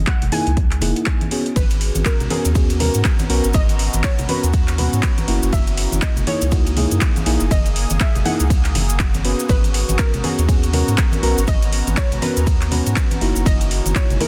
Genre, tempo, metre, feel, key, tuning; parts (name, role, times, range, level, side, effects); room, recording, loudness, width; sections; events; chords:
deep house; 121 BPM; 4/4; swing 59% on 16ths; G# minor; A4 = 440 Hz
warm sub bass; bass; 0.0-14.2 s; E1 to G#2; -22 LUFS; equal; tube saturation, sidechain pumping
soft round pluck; melody; 0.1-14.3 s; G#4 to G#5; -32 LUFS; equal; ensemble chorus, tape echo
deep house drum kit; drums; 0.1-14.3 s; handclaps, hi-hat, ride cymbal; -28 LUFS; equal; studio reverb
electronic kick drum; drums; 0.1-14.1 s; -20 LUFS; equal; studio reverb
congas; percussion; 0.2-14.3 s; -30 LUFS; equal
mellow FM electric piano; stabs; 0.3-14.3 s; A#3 to B4; -26 LUFS; equal; chorus, sidechain pumping, analog delay
deep dark ambient pad; sustained chords; 2.5-14.3 s; E3 to D#6; -32 LUFS; equal; chorus, built-in reverb, sidechain pumping
cabasa; percussion; 1.6-14.2 s; -32 LUFS; equal
little or no reverb; dense, heavily limited modern master; -18 LUFS; mono
0.0-14.3 A section
0.0 F#13; 1.6 G#m11; 5.3 F#13; 9.5 G#m11; 13.2 F#13